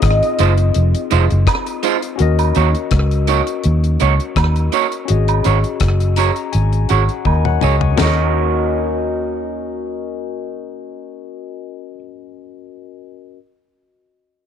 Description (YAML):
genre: lovers rock reggae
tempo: 83 BPM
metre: 4/4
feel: swing 55% on 16ths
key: Eb dorian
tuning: A4 = 439 Hz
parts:
  - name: warm velvety synth lead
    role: melody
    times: 0.0-1.5 s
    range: Eb5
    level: -22 LUFS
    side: equal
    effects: chorus, tape echo
  - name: barky tine electric piano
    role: accompaniment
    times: 0.0-13.4 s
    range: C4 to Db6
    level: -23 LUFS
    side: left 12 dB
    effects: wide subtle chorus
  - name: vintage muted fingered electric bass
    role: bass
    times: 0.0-12.0 s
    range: F1 to Eb2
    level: -15 LUFS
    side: equal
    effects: none
  - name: deep reggae drum kit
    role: drums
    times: 0.0-8.2 s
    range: hi-hat, kick drum, rim click, snare drum, toms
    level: -21 LUFS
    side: left 2 dB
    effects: slapback echo
  - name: electric guitar through a small old amp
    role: stabs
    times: 0.4-12.0 s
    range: Ab3 to Db5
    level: -21 LUFS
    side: right 14 dB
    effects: none
  - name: tambourine and woodblock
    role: percussion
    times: 0.4-8.3 s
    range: none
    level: -26 LUFS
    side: right 13 dB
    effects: none
room: light reverb, small room ambience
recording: 1960s-style stereo with parts hard left and right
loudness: -14 LUFS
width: side -8 dB against mid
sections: 0.0-2.2 A section; 2.2-8.0 B section; 8.0-10.9 C section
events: tine electric piano fill 5.8-8.0; drum fill 7.3-8.0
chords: 0.0 Fm7; 2.2 Ebm7; 5.1 Ab7sus4; 8.0 Ebm7